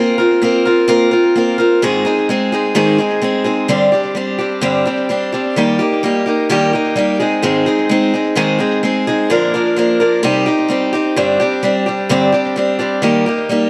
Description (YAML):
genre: rock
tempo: 129 BPM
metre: 4/4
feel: straight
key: unclear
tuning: A4 = 440 Hz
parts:
  - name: picked steel-string acoustic guitar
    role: solo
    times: 0.0-13.7 s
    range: G2 to Bb4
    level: -15 LUFS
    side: equal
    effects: tape echo
room: moderate studio ambience, RT60 0.5 s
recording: dark, warm production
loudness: -15 LUFS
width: mono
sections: 0.0-3.7 A section; 3.7-13.7 B section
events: none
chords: 0.0 Bbsus2; 1.8 Ab; 3.7 Gsus4; 5.6 Eb; 7.2 Ab; 9.3 Bb; 10.2 Cm; 11.2 Gsus4; 13.0 Eb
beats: 0.43 0.89 1.36 | 1.83 2.29 2.76 3.22 | 3.69 4.16 4.62 5.09 | 5.56 6.02 6.49 6.96 | 7.42 7.89 8.36 8.82 | 9.29 9.76 10.22 10.69 | 11.16 11.62 12.09 12.56 | 13.02 13.49